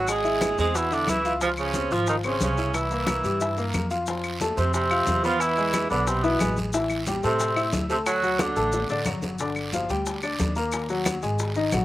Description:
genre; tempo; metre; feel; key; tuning
Afro-Cuban jazz; 180 BPM; 4/4; straight; unclear; A4 = 439 Hz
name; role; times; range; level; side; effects
mellow cor anglais; melody; 0.0-8.9 s; B3 to Ab4; -27 LUFS; right 1 dB; slapback echo
clear tenor saxophone; second line; 0.0-8.9 s; B2 to Ab3; -28 LUFS; right 4 dB; slapback echo
warm baby grand piano; accompaniment; 0.0-11.8 s; D3 to F6; -28 LUFS; left 2 dB; none
upright bass; bass; 0.0-11.8 s; G1 to A2; -30 LUFS; equal; none
bongos; percussion; 0.1-11.8 s; none; -36 LUFS; left 4 dB; none
claves; percussion; 0.1-11.8 s; none; -34 LUFS; left 3 dB; none
congas; percussion; 0.1-11.8 s; none; -31 LUFS; left 1 dB; none
guiro; percussion; 0.1-11.8 s; none; -37 LUFS; right 4 dB; none
maracas; percussion; 0.1-11.8 s; none; -37 LUFS; left 4 dB; none
room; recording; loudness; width
little or no reverb; recorded outdoors, with no room sound, faint mains hum; -22 LUFS; side -15 dB against mid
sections
0.0-4.1 A section; 4.1-11.8 B section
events
drum fill 8.7-9.4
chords
0.1 Abaug7; 1.4 Dbmaj7; 2.7 C7; 4.1 Fmaj7; 5.4 E; 6.7 Am7; 8.1 D; 9.4 Gm7; 10.7 Absus2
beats
| 0.08 0.41 0.75 1.08 | 1.41 1.75 2.08 2.41 | 2.75 3.08 3.41 3.75 | 4.08 4.41 4.74 5.08 | 5.41 5.74 6.07 6.41 | 6.74 7.07 7.40 7.74 | 8.07 8.40 8.73 9.07 | 9.40 9.73 10.06 10.40 | 10.73 11.06 11.39 11.73

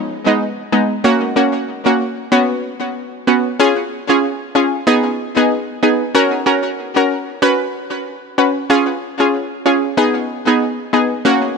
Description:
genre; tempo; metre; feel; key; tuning
dancehall; 94 BPM; 4/4; swing 56% on 16ths; unclear; A4 = 442 Hz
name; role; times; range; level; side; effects
analog pluck; solo; 0.0-11.6 s; G#3 to B4; -14 LUFS; equal; chorus, digital delay
room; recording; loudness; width
moderate lush hall reverb, RT60 2.7 s; none; -14 LUFS; side -5 dB against mid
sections
0.0-11.6 A section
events
none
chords
0.0 G#m; 1.0 F#; 2.3 Bsus2; 3.6 C#; 4.9 G#m; 6.2 F#; 7.4 Bsus2; 8.7 C#; 10.0 G#m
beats
0.41 1.04 1.68 | 2.32 2.96 3.60 4.24 | 4.88 5.51 6.15 6.79 | 7.43 8.07 8.70 9.34 | 9.98 10.62 11.26

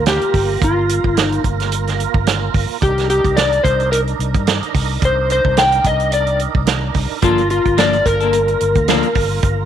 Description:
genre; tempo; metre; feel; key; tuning
straight-eighth soul blues; 109 BPM; 4/4; swing 55% on 16ths; G minor; A4 = 440 Hz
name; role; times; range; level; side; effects
electric slide guitar; melody; 0.0-9.7 s; F4 to G5; -16 LUFS; left 2 dB; none
tonewheel organ; accompaniment; 0.0-9.7 s; Bb3 to Bb4; -24 LUFS; right 14 dB; chorus vibrato, slow rotary speaker
fingered electric bass; bass; 0.0-9.7 s; G1 to G2; -20 LUFS; left 1 dB; none
warm soul drum kit; drums; 0.1-9.6 s; hi-hat, kick drum, snare drum; -19 LUFS; right 3 dB; none
clean electric guitar; stabs; 7.2-9.1 s; F3 to A4; -21 LUFS; left 13 dB; none
room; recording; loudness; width
light reverb, small room reverb; 1960s-style stereo with parts hard left and right; -14 LUFS; side -9 dB against mid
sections
0.0-9.7 A section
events
none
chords
0.0 Gm7; 2.8 Cm9; 7.2 Gm9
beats
0.06 | 0.61 1.16 1.72 2.27 | 2.82 3.37 3.92 4.48 | 5.03 5.58 6.13 6.68 | 7.24 7.79 8.34 8.89 | 9.44

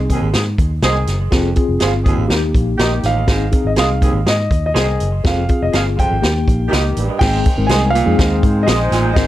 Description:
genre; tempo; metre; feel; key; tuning
uptempo 1960s-style soul; 122 BPM; 4/4; straight; Ab major; A4 = 440 Hz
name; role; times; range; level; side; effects
mellow tine electric piano; accompaniment; 0.0-9.3 s; Ab3 to Bb4; -21 LUFS; left 4 dB; medium stereo tremolo
vintage muted fingered electric bass; bass; 0.0-9.3 s; F1 to Ab2; -18 LUFS; equal; none
warm horn section; second line; 0.1-9.3 s; C3 to C5; -24 LUFS; left 1 dB; none
warm baritone saxophone; riff; 0.1-9.3 s; Eb2 to Bb2; -23 LUFS; right 5 dB; none
vintage drum kit; drums; 0.1-9.3 s; crash cymbal, hi-hat, kick drum, snare drum; -17 LUFS; equal; none
electric guitar through a small old amp; stabs; 0.8-8.8 s; G4 to F5; -26 LUFS; right 5 dB; tape echo
warm grand piano; melody; 3.1-9.3 s; Eb5 to Ab5; -21 LUFS; equal; none
hand-pumped harmonium; sustained chords; 7.2-9.3 s; Eb3 to C4; -30 LUFS; left 1 dB; none
room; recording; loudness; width
small room ambience; dark, warm production; -13 LUFS; side -14 dB against mid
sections
0.0-7.2 A section; 7.2-9.3 B section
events
none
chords
0.0 Ab; 1.3 Fm; 2.3 Eb; 3.3 Ab; 5.2 Fm; 6.2 Eb; 7.2 Ab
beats
0.34 0.83 | 1.32 1.81 2.30 2.79 | 3.28 3.77 4.26 4.76 | 5.25 5.74 6.23 6.72 | 7.21 7.69 8.18 8.67 | 9.16

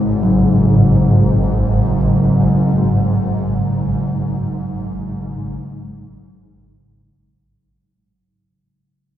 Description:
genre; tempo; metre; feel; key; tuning
dark ambient drone; free time; none; none; unclear; A4 = 441 Hz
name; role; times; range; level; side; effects
quartz singing bowl; arpeggios; 0.0-5.9 s; C#3 to F#3; -17 LUFS; equal; tape echo
swarming drone; drone; 0.0-7.6 s; G#1 to G#2; -17 LUFS; equal; built-in reverb
room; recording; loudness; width
moderate huge ambient reverb, RT60 8.0 s; dark, warm production; -13 LUFS; side -12 dB against mid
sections
0.0-7.6 A section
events
fade-out 2.5-7.6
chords
0.0 F#sus2/G#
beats
free time

